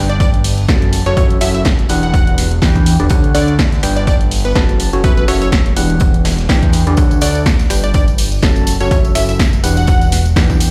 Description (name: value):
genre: piano house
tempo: 124 BPM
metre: 4/4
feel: swing 56% on 16ths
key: unclear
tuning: A4 = 440 Hz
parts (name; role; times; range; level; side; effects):
- barking FM electric piano; riff; 0.0-10.7 s; D3 to A5; -21 LUFS; equal; chorus, cassette tape, sidechain pumping
- fat analog bass; bass; 0.0-10.7 s; E1 to E2; -19 LUFS; equal; sidechain pumping
- plucky unison lead; melody; 0.1-10.3 s; B4 to F#5; -25 LUFS; equal; cassette tape, dub echo
- punchy analog drum machine; drums; 0.1-10.7 s; finger snaps, hi-hat, snare drum; -23 LUFS; equal; none
- big rock drum kit; drums; 0.2-10.7 s; hi-hat, snare drum; -33 LUFS; equal; none
- electronic kick drum; drums; 0.2-10.6 s; none; -16 LUFS; equal; none
- tambourine; percussion; 7.0-10.7 s; none; -31 LUFS; equal; none
room: small room ambience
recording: played on a big sound system in a bare room, stone room reverb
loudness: -13 LUFS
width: mono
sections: 0.0-10.7 A section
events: none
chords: 0.0 G; 0.9 F#m7; 1.9 Em7; 3.1 Dmaj7; 3.8 G; 4.8 F#m7; 5.8 Em7; 7.0 Dmaj7; 7.7 G; 8.7 F#m7; 9.6 Em7